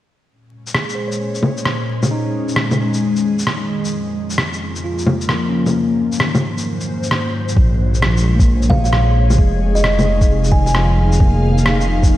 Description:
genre	future garage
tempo	132 BPM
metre	4/4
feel	swing 65% on 16ths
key	unclear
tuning	A4 = 438 Hz
part	ethereal airy pad	sustained chords	0.9-12.2 s	Eb4 to F5	-21 LUFS	left 2 dB	ensemble chorus, built-in reverb, phaser, sidechain pumping
part	tine electric piano	accompaniment	0.7-12.2 s	C3 to Db5	-23 LUFS	right 1 dB	lush chorus, sidechain pumping, low-pass filter, diffuse ambient delay
part	electronic shaker, rim click and bongos	drums	0.7-12.1 s	none	-20 LUFS	left 1 dB	overdrive
part	dark detuned saw bass	bass	7.6-12.2 s	F1 to Bb1	-16 LUFS	equal	none
part	electronic kick drum	drums	7.6-12.1 s	none	-12 LUFS	equal	overdrive
part	kalimba	melody	8.7-10.7 s	Eb5 to Ab5	-22 LUFS	right 1 dB	analog delay
room	moderate lush hall reverb, RT60 1.9 s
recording	dreamy mix soaked in reverb, vinyl crackle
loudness	-14 LUFS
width	side -14 dB against mid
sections	0.3-7.6 A section; 7.6-12.2 B section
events	none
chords	0.3 Bbm9; 2.1 Fm7; 3.9 Db6/F; 5.7 Ab7; 7.6 Bbm9; 9.4 Fm7

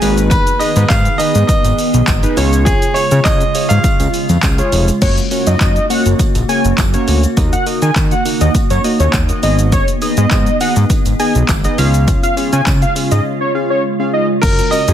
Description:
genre	dance-pop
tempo	102 BPM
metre	4/4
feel	straight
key	unclear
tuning	A4 = 435 Hz
part	bright grand piano	melody	0.0-4.7, 14.4-14.9 s	Ab4 to Ab5	-17 LUFS	right 1 dB	none
part	warm analog keys	accompaniment	0.0-14.9 s	Bb3 to Gb5	-20 LUFS	left 1 dB	chorus, sidechain pumping
part	glassy FM pad	sustained chords	0.0-14.9 s	Db3 to Ab4	-20 LUFS	right 2 dB	ensemble chorus, built-in reverb, sidechain pumping
part	fat analog bass	bass	0.0-14.9 s	F1 to Eb3	-14 LUFS	equal	sidechain pumping
part	punchy analog drum machine	drums	0.0-14.9 s	crash cymbal, handclaps, hi-hat, kick drum, shaker	-16 LUFS	equal	none
part	tambourine	percussion	0.0-14.9 s	none	-33 LUFS	right 8 dB	none
part	wide unison lead	melody	5.0-14.3 s	Db5 to Ab5	-19 LUFS	equal	none
room	light reverb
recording	dense, heavily limited modern master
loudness	-11 LUFS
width	side -10 dB against mid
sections	0.0-5.0 A section; 5.0-14.4 B section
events	break 13.3-14.4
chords	0.0 Abm; 2.4 Db; 5.0 Gb; 7.4 Ebm; 9.4 Abm; 11.8 Db; 14.4 Gb

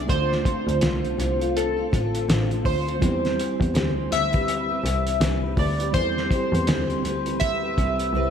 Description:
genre	indie pop, bedroom pop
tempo	82 BPM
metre	4/4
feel	swing 60% on 16ths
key	C major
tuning	A4 = 440 Hz
part	fingerpicked steel-string acoustic guitar	accompaniment	0.0-8.3 s	D3 to B4	-30 LUFS	left 4 dB	ensemble chorus, warbly pitch drift
part	mellow tine electric piano	accompaniment	0.0-8.3 s	G3 to C5	-31 LUFS	right 4 dB	medium stereo tremolo
part	chorused retro synth keys	melody	0.1-8.3 s	A4 to E5	-26 LUFS	equal	lush chorus, analog delay
part	clear double bass	bass	0.1-8.3 s	A1 to E2	-27 LUFS	equal	none
part	cloth-damped thuddy drum kit	drums	0.1-8.1 s	hi-hat, kick drum, snare drum	-26 LUFS	equal	none
room	moderate plate reverb, RT60 2.5 s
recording	dreamy mix soaked in reverb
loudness	-21 LUFS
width	side -8 dB against mid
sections	0.0-8.3 A section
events	drum fill 8.1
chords	0.1 Dm7; 3.0 Cmaj7

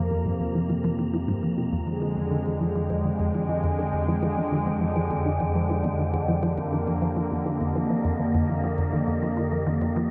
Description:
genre	ambient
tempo	102 BPM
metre	4/4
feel	straight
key	F dorian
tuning	A4 = 437 Hz
part	lush unison pad	sustained chords	0.0-10.1 s	F2 to Bb3	-28 LUFS	equal	chorus, phaser
part	wind-like tuned noise texture	texture	0.0-10.1 s	G4 to Bb5	-40 LUFS	equal	built-in reverb
part	resonant blip pluck	riff	0.1-10.0 s	F2 to F3	-30 LUFS	equal	chorus, phaser, delay
room	moderate plate reverb, RT60 3.0 s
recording	echo-heavy mix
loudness	-26 LUFS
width	mono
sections	0.0-10.1 A section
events	fade-in on synth texture 0.0-10.1; filter sweep on synth arpeggio sound 0.0-10.1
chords	0.0 Fm

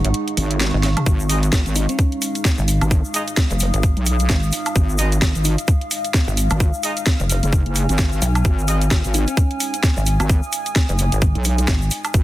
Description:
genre	bass house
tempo	130 BPM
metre	4/4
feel	swing 58% on 16ths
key	unclear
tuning	A4 = 436 Hz
part	dark analog pad	sustained chords	0.0-12.2 s	G#3 to G#5	-30 LUFS	right 2 dB	wide subtle chorus, sidechain pumping
part	pulsing pluck wobble bass	bass	0.0-11.9 s	F#1 to B1	-18 LUFS	equal	chorus, overdrive, sidechain pumping
part	garage drum kit	drums	0.0-12.2 s	hi-hat, snare drum, toms, woodblock	-24 LUFS	right 1 dB	overdrive
part	deep dark ambient pad	texture	0.0-12.2 s	G#3 to E#6	-31 LUFS	left 2 dB	chorus, built-in reverb, sidechain pumping
part	wobble bass	bass	0.4-12.2 s	F#1 to B1	-19 LUFS	equal	chorus, overdrive, sidechain pumping
part	electronic kick drum	drums	1.1-12.2 s	none	-17 LUFS	equal	overdrive
part	egg shaker	percussion	1.1-12.2 s	none	-30 LUFS	left 3 dB	none
part	warm horn section	stabs	1.3-8.8 s	G#3 to D#5	-28 LUFS	equal	sidechain pumping, dub echo
part	bell-like FM electric piano	melody	1.8-2.4, 5.4-5.6, 9.1-9.7 s	C#4 to D#4	-29 LUFS	equal	chorus, dub echo
room	little or no reverb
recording	dense, heavily limited modern master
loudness	-16 LUFS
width	side -16 dB against mid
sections	0.0-12.2 A section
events	kick drops out 0.1-1.1; drum fill 0.8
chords	0.0 G#5

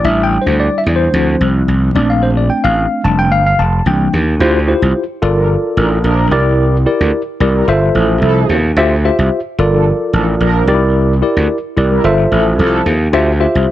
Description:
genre	funk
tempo	110 BPM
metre	4/4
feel	straight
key	D minor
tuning	A4 = 440 Hz
part	mellow tine electric piano	accompaniment	0.0-13.7 s	E3 to A5	-14 LUFS	left 1 dB	medium stereo tremolo
part	gritty slap bass	bass	0.0-13.7 s	F1 to E2	-13 LUFS	equal	overdrive
part	mellow synth brass	second line	5.4-12.8 s	F3 to Bb4	-18 LUFS	right 2 dB	chorus
room	light reverb, digital ambience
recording	none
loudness	-10 LUFS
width	side -13 dB against mid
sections	0.0-4.4 A section; 4.4-13.7 B section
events	tine electric piano solo 0.0-4.4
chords	0.0 A7sus4; 1.1 Dm9; 2.0 Bbmaj9; 3.0 F6; 3.9 C9; 4.4 Dm11; 5.2 Gm9; 6.3 C9; 7.7 G13sus4; 8.8 Dm11; 9.6 Gm9; 10.7 C9; 12.0 G13sus4; 13.1 Dm11

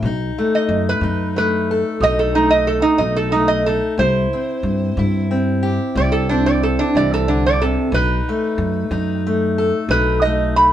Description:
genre	acoustic country blues, solo or duo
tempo	61 BPM (dotted quarters)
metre	12/8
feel	straight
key	unclear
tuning	A4 = 440 Hz
part	lap resonator guitar	melody	0.0-10.7 s	D4 to B5	-17 LUFS	right 2 dB	none
part	fingerpicked steel-string acoustic guitar	accompaniment	0.0-10.7 s	B2 to B4	-20 LUFS	left 2 dB	none
part	upright bass	bass	0.0-10.7 s	B1 to G2	-21 LUFS	equal	none
room	moderate studio reverb, RT60 0.7 s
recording	band playing live in one room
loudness	-15 LUFS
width	side -11 dB against mid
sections	0.0-10.7 A section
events	resonator guitar played with a steel bar solo 0.0-10.7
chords	0.0 B7; 4.0 C; 7.9 B7

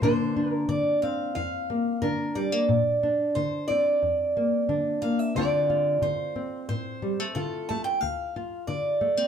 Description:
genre	folk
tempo	90 BPM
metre	4/4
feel	straight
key	unclear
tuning	A4 = 440 Hz
part	picked old ladder-braced acoustic guitar	melody	0.0-9.3 s	A4 to A5	-26 LUFS	right 2 dB	plate reverb
part	nylon-string guitar	accompaniment	0.0-9.3 s	D2 to F4	-28 LUFS	left 2 dB	none
room	wet small room reverb, RT60 0.6 s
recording	heard from further back in the room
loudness	-24 LUFS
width	side -8 dB against mid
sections	0.0-9.3 A section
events	none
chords	0.0 Bbadd9; 5.4 Dm7

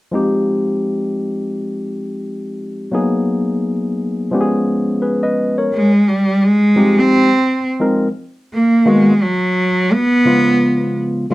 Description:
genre	hip hop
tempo	86 BPM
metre	4/4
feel	swing 59% on 16ths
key	unclear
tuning	A4 = 439 Hz
part	barky tine electric piano	accompaniment	0.1-11.3 s	Db3 to Eb5	-16 LUFS	left 1 dB	overdrive
part	clear cello	melody	5.7-11.3 s	Gb3 to C4	-12 LUFS	right 1 dB	none
room	wet small room reverb, RT60 0.5 s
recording	dark, warm production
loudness	-13 LUFS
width	side -18 dB against mid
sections	0.1-5.7 A section; 5.7-11.3 B section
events	none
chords	0.1 Fm9; 2.9 Abm9; 4.3 Db7; 5.7 Fm9; 8.5 Abm9; 9.9 Db7

